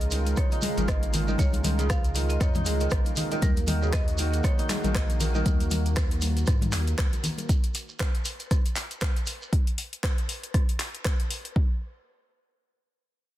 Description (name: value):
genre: afro house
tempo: 118 BPM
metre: 4/4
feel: swing 57% on 16ths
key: Eb minor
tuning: A4 = 440 Hz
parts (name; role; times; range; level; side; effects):
- marimba with hard mallets; melody; 0.0-5.3 s; Bb4 to F5; -40 LUFS; left 1 dB; ping-pong delay
- warm analog pad; sustained chords; 0.0-7.5 s; Db3 to Bb4; -35 LUFS; right 2 dB; chorus, sidechain pumping
- kora; arpeggios; 0.0-7.5 s; Db3 to Eb4; -33 LUFS; right 2 dB; sidechain pumping, ping-pong delay
- warm sub bass; bass; 0.0-7.1 s; Ab1 to Ab2; -27 LUFS; equal; sidechain pumping
- deep house drum kit; drums; 0.0-11.5 s; handclaps, hi-hat, rim click; -33 LUFS; left 1 dB; overdrive, soft clipping on snare
- shekere; percussion; 0.0-9.5 s; none; -39 LUFS; right 4 dB; none
- congas; percussion; 0.1-7.5 s; none; -32 LUFS; left 3 dB; none
- electronic kick drum; drums; 0.4-11.7 s; none; -25 LUFS; equal; overdrive
room: studio ambience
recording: dense, heavily limited modern master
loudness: -24 LUFS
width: side -14 dB against mid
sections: 0.0-11.6 A section; 11.6-13.4 B section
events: drop 0.0-11.6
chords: 0.0 Db6; 3.4 Ebm; 7.5 N.C.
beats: 0.37 0.88 | 1.39 1.90 2.41 2.92 | 3.42 3.93 4.44 4.95 | 5.46 5.96 6.47 6.98 | 7.49 8.00 8.51 9.02 | 9.53 10.03 10.54 11.05 | 11.56